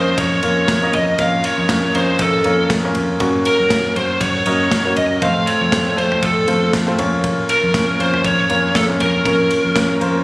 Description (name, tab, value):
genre	piano-driven pop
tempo	119 BPM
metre	4/4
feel	swing 56% on 16ths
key	Bb harmonic minor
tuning	A4 = 440 Hz
part	biting lead guitar	melody	0.0-10.2 s	A4 to F5	-17 LUFS	equal	overdrive
part	warm upright piano	accompaniment	0.0-10.2 s	A3 to Eb5	-19 LUFS	equal	plate reverb
part	vintage muted fingered electric bass	bass	0.0-10.2 s	F2 to Gb2	-22 LUFS	equal	none
part	modern studio drum kit	drums	0.2-10.1 s	kick drum, ride cymbal, snare drum, toms	-22 LUFS	equal	none
part	tonewheel organ	sustained chords	3.2-10.2 s	A2 to Gb4	-31 LUFS	equal	none
room	light reverb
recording	recorded on a phone in the room, studio reverb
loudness	-14 LUFS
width	side -22 dB against mid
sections	0.0-10.2 A section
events	none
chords	0.0 Bbm/F; 3.2 Gb; 5.2 F; 7.0 Bbm/F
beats	0.18 0.68 | 1.19 1.69 2.19 2.70 | 3.20 3.71 4.21 4.72 | 5.22 5.72 6.23 6.73 | 7.24 7.74 8.24 8.75 | 9.25 9.76